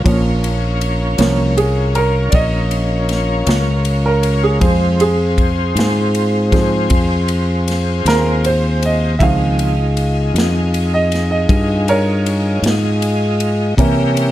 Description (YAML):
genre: slow blues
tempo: 52 BPM (dotted quarters)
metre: 12/8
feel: straight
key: F minor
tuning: A4 = 442 Hz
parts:
  - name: warm grand piano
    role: accompaniment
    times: 0.0-14.3 s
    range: Eb3 to F5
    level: -19 LUFS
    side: right 3 dB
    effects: none
  - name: tonewheel organ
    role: sustained chords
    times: 0.0-14.3 s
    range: C4 to Db5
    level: -21 LUFS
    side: equal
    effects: chorus vibrato, slow rotary speaker
  - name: fingered electric bass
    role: bass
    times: 0.0-14.3 s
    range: Bb1 to C3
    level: -16 LUFS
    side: equal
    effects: none
  - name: natural country drum kit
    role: drums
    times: 0.1-14.3 s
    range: kick drum, ride cymbal, snare drum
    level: -20 LUFS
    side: left 1 dB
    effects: none
room: light reverb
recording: dark, warm production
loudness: -13 LUFS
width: side -14 dB against mid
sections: 0.0-14.3 A section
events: grand piano solo 0.0-14.3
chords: 0.0 Bbm; 4.6 Fm; 9.2 Db; 13.8 C7b9